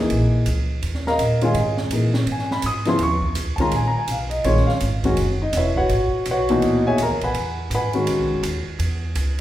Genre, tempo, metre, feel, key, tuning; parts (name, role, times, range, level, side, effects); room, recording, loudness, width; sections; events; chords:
modal jazz; 166 BPM; 4/4; swing 63% on 8ths; Eb phrygian; A4 = 440 Hz
warm grand piano; accompaniment; 0.0-8.4 s; Bb2 to Eb6; -20 LUFS; left 1 dB
upright bass; bass; 0.1-9.4 s; Fb1 to Bb2; -23 LUFS; equal
open jazz drum kit; drums; 0.1-9.4 s; hi-hat, kick drum, ride cymbal, snare drum; -29 LUFS; right 2 dB
wet recital hall reverb, RT60 1.3 s; recorded in a church or concert hall; -18 LUFS; side -13 dB against mid
0.0-9.4 A section
0.0 Eb9sus4; 5.2 Gb9sus4